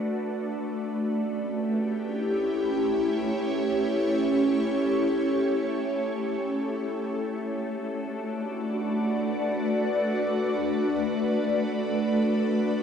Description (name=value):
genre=ambient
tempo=free time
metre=none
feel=none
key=B minor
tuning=A4 = 441 Hz
part: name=ethereal airy pad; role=solo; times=0.0-12.8 s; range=A3 to D5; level=-24 LUFS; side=equal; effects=ensemble chorus, built-in reverb, phaser, tape echo
room=wet huge ambient reverb, RT60 9.3 s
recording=dark, warm production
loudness=-24 LUFS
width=side -7 dB against mid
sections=0.0-7.3 A section; 7.3-12.8 B section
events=none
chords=0.0 Bm7; 0.8 A7; 7.3 Bm7